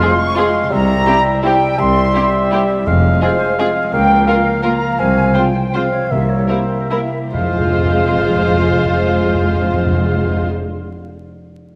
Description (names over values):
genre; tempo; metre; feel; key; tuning
classical, orchestral ballroom waltz; 134-183 BPM; 3/4; rubato; F minor; A4 = 441 Hz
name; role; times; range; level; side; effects
muted studio violin section; melody; 0.0-10.5 s; G4 to C5; -28 LUFS; equal; none
flute section; second line; 0.0-10.5 s; C5 to Db6; -22 LUFS; equal; none
muted studio violin section; second line; 0.0-10.5 s; E4 to F4; -29 LUFS; equal; none
warm oboe; second line; 0.0-10.5 s; E5 to F5; -25 LUFS; equal; none
muted studio viola section; accompaniment; 0.0-10.5 s; G3 to C4; -28 LUFS; equal; none
warm bassoon; accompaniment; 0.0-10.5 s; G3 to C4; -23 LUFS; equal; none
mellow French horn section; sustained chords; 0.0-10.5 s; G3 to F4; -26 LUFS; equal; none
concert harp; arpeggios; 0.0-11.2 s; F2 to Ab5; -27 LUFS; equal; none
timpani; percussion; 0.0-0.1, 2.9-3.4, 6.1-10.5 s; F2 to C3; -24 LUFS; equal; none
muted chamber cello section; bass; 0.7-10.5 s; C2 to F2; -24 LUFS; equal; none
muted studio double bass section; bass; 0.7-10.5 s; F1 to Db2; -25 LUFS; equal; none
room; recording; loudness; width
wet scoring stage reverb, RT60 2.1 s; vinyl crackle; -15 LUFS; mono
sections
0.0-7.3 A section; 7.3-9.9 B section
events
slowing down 4.5-7.3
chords
0.0 Fm; 0.7 C7; 2.9 Fm; 3.9 Bbm/Db; 5.0 Fm/C; 6.1 C7; 7.3 Fm